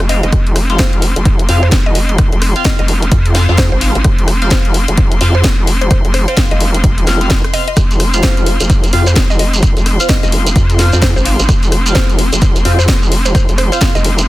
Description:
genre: bass house.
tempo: 129 BPM.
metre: 4/4.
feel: swing 60% on 16ths.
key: unclear.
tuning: A4 = 436 Hz.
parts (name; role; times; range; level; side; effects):
vowel-sweep wobble bass; bass; 0.0-14.3 s; Eb1 to F2; -14 LUFS; equal; chorus, overdrive, sidechain pumping.
garage drum kit; drums; 0.0-14.3 s; hi-hat, rim click, snare drum; -19 LUFS; left 1 dB; studio reverb.
rich chamber string section; texture; 0.0-14.3 s; C6; -26 LUFS; left 2 dB; sidechain pumping.
mallet-like synth pluck; melody; 0.1-14.1 s; C5 to Eb5; -23 LUFS; equal; chorus, vintage 12-bit sampler grit, dub echo.
band-passed chord stab; stabs; 0.1-14.3 s; C4 to F5; -21 LUFS; left 1 dB; phaser, wide subtle chorus, sidechain pumping, dub echo.
electronic kick drum; drums; 0.3-13.9 s; none; -13 LUFS; equal; studio reverb.
shekere; percussion; 7.8-14.3 s; none; -21 LUFS; right 3 dB; none.
room: digital ambience.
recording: dense, heavily limited modern master.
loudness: -9 LUFS.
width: side -17 dB against mid.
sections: 0.0-14.3 A section.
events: fade-in on string section 0.0-14.3.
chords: 0.0 F5.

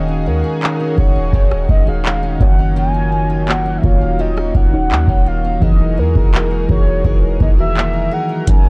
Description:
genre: contemporary R&B.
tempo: 84 BPM.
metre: 4/4.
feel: straight.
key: unclear.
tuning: A4 = 444 Hz.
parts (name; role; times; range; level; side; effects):
mellow horn-like synth lead; melody; 0.0-8.7 s; A#4 to G#5; -24 LUFS; equal; chorus, digital delay.
muted felt-like synth keys; accompaniment; 0.0-8.7 s; D#3 to F#5; -24 LUFS; equal; chorus, phaser.
lush unison pad; sustained chords; 0.0-8.7 s; D#3 to A#4; -30 LUFS; equal; chorus.
picked steel-string acoustic guitar; arpeggios; 0.0-8.7 s; F#2 to G#4; -28 LUFS; equal; none.
clean 808-style bass; bass; 0.0-8.7 s; D#1 to E2; -20 LUFS; equal; none.
booming analog drum machine; drums; 0.6-8.7 s; handclaps, hi-hat, kick drum, rim click; -16 LUFS; equal; none.
room: little or no reverb.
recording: dark, warm production.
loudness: -15 LUFS.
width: mono.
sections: 0.0-8.7 A section.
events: break 0.0-8.5.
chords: 0.0 D#m11; 5.6 Emaj9#11.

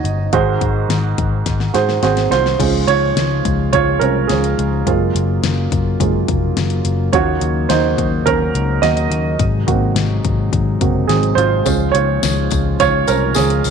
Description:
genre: piano-driven pop.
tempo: 106 BPM.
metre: 4/4.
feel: straight.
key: Db major.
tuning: A4 = 440 Hz.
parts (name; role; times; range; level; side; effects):
warm upright piano; accompaniment; 0.0-13.7 s; Ab2 to Eb5; -17 LUFS; right 8 dB; none.
vintage muted picked electric bass; bass; 0.0-13.7 s; F1 to Ab2; -18 LUFS; left 2 dB; none.
pop drum kit; drums; 0.1-13.7 s; crash cymbal, hi-hat, kick drum, snare drum; -22 LUFS; left 6 dB; none.
pipe organ, principal; sustained chords; 2.6-13.7 s; C3 to F4; -22 LUFS; left 1 dB; none.
tambourine; percussion; 11.7-13.7 s; none; -27 LUFS; left 18 dB; none.
room: moderate plate reverb, RT60 2.1 s.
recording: 1960s-style stereo with parts hard left and right.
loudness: -14 LUFS.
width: side -6 dB against mid.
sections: 0.0-2.6 A section; 2.6-13.7 B section.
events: drum fill 1.5-2.6; upright piano solo 2.6-13.7.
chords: 0.3 Ab7; 2.6 Db; 4.9 Gbmaj7; 7.1 Ebm7; 9.4 Ab7; 11.7 Db.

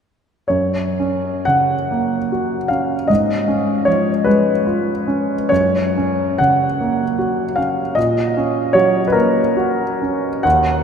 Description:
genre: classical, romantic nocturne for solo piano.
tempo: 40-52 BPM (dotted quarters).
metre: 6/8.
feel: rubato.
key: F# major.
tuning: A4 = 442 Hz.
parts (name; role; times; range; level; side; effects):
warm concert grand piano; solo; 0.5-10.8 s; D#2 to F#5; -15 LUFS; equal; none.
room: wet cathedral reverb, RT60 6.1 s.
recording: in a vast, echoing space.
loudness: -15 LUFS.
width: side -7 dB against mid.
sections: 0.5-10.8 A section.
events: none.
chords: 0.5 F#; 3.1 C#7/G#; 5.5 F#; 8.0 F#/A#.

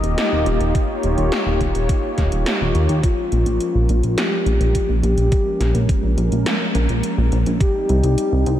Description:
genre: synthwave.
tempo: 105 BPM.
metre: 4/4.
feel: straight.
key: unclear.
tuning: A4 = 441 Hz.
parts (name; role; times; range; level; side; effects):
warm analog pad; sustained chords; 0.0-8.6 s; F3 to Eb5; -23 LUFS; equal; lush chorus, sidechain pumping.
chorused synth bass; bass; 0.0-8.6 s; Eb1 to Eb2; -18 LUFS; equal; sidechain pumping.
80s electronic pad drums; drums; 0.0-8.6 s; hi-hat, snare drum; -27 LUFS; equal; none.
electronic kick drum; drums; 0.7-7.7 s; none; -20 LUFS; equal; overdrive.
soft octave-layered synth lead; melody; 3.0-8.6 s; F4 to G4; -24 LUFS; left 1 dB; chorus, tremolo, ping-pong delay.
room: moderate cathedral reverb, RT60 5.3 s.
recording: dreamy mix soaked in reverb.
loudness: -16 LUFS.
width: side -12 dB against mid.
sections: 0.0-3.0 A section; 3.0-8.6 B section.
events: filter sweep on analog synth pad 3.0-8.6.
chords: 0.0 Ebadd9; 3.0 Bbm7; 7.6 Cm.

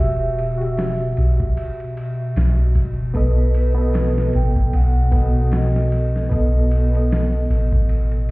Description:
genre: trip hop.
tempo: 76 BPM.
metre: 4/4.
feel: swing 57% on 16ths.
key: E harmonic minor.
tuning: A4 = 440 Hz.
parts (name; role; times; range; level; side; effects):
vibraphone with medium mallets; melody; 0.0-8.3 s; B4 to G5; -28 LUFS; right 1 dB; dub echo.
bright reed electric piano; accompaniment; 0.0-8.3 s; B3 to E5; -26 LUFS; right 1 dB; fast tremolo, harmonic tremolo, vintage 12-bit sampler grit, tape echo.
warbly tape-like pad; sustained chords; 0.0-8.3 s; B2; -24 LUFS; equal; chorus, built-in reverb.
soft 808-style bass; bass; 0.0-8.3 s; E1 to B1; -18 LUFS; equal; none.
dusty soul sampler-style drum kit; drums; 0.4-8.3 s; hi-hat, kick drum, ride cymbal, snare drum; -22 LUFS; equal; none.
egg shaker; percussion; 0.8-7.3 s; none; barely audible; none; none.
room: little or no reverb.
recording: heard muffled through a wall, stone room reverb, vinyl crackle, EQ.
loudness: -16 LUFS.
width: side -22 dB against mid.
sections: 0.0-8.3 A section.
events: none.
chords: 0.0 Emadd9; 3.2 B7.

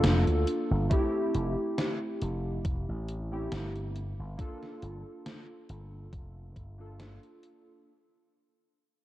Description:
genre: vaporwave.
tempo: 69 BPM.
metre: 4/4.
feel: swing 54% on 16ths.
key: unclear.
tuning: A4 = 438 Hz.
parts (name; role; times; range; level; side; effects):
warbly lo-fi synth keys; accompaniment; 0.0-7.9 s; A3 to A4; -33 LUFS; equal; analog chorus, analog delay.
slap bass with an envelope filter; bass; 0.0-7.2 s; F1 to D2; -32 LUFS; equal; tube saturation.
gated 80s digital drum machine; drums; 0.0-7.6 s; hi-hat, snare drum; -33 LUFS; equal; gated reverb, gated reverb snare, overdrive.
electronic kick drum; drums; 0.9-6.7 s; none; -31 LUFS; equal; overdrive.
room: light reverb.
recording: dark, warm production, cassette tape.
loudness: -29 LUFS.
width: side -14 dB against mid.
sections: 0.0-7.9 A section.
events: fade-out 0.0-7.9.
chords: 0.0 Gm7; 0.9 Fmaj9; 4.0 Gm7.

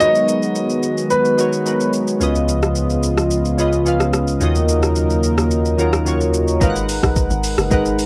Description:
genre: amapiano.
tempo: 109 BPM.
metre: 4/4.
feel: straight.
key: G# dorian.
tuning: A4 = 440 Hz.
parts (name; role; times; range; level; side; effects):
warm concert grand piano; melody; 0.0-1.9 s; B4 to D#5; -20 LUFS; equal; cassette tape, tape echo, plate reverb.
glassy digital keys; accompaniment; 0.0-8.1 s; C#3 to F#5; -23 LUFS; equal; chorus, cassette tape, plate reverb.
warm analog pad; sustained chords; 0.0-6.6 s; C#3 to A#4; -23 LUFS; equal; chorus, cassette tape.
deep house drum kit; drums; 0.0-8.1 s; hi-hat, kick drum, rim click, shaker; -24 LUFS; equal; overdrive, cassette tape.
mellow tine electric piano; bass; 2.2-6.6 s; C#2 to D#2; -22 LUFS; equal; none.
deep log drum bass; bass; 6.6-8.1 s; F#1 to B1; -24 LUFS; equal; none.
room: moderate booth ambience, RT60 0.2 s.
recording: home recording on cassette.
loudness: -17 LUFS.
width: mono.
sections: 0.0-6.6 A section; 6.6-8.1 B section.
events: drop 6.6-8.1.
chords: 0.0 G#m9; 2.2 C#7; 4.4 D#m7; 6.6 G#m9.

